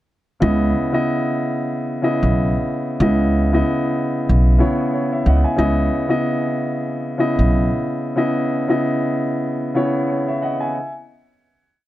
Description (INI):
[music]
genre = hip hop, boom-bap hip-hop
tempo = 93 BPM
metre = 4/4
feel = swing 59% on 16ths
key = C# minor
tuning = A4 = 443 Hz
[part]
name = dark baby grand piano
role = accompaniment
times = 0.4-10.9 s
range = C#3 to G#5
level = -18 LUFS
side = equal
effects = cassette tape, high-pass filter, low-pass filter
[part]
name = upright bass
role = bass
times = 0.4-7.7 s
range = B1 to C#2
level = -16 LUFS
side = equal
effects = none
[sound]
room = light reverb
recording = dark, warm production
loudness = -17 LUFS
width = side -14 dB against mid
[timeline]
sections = 0.4-10.7 hook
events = none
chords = 0.4 C#m9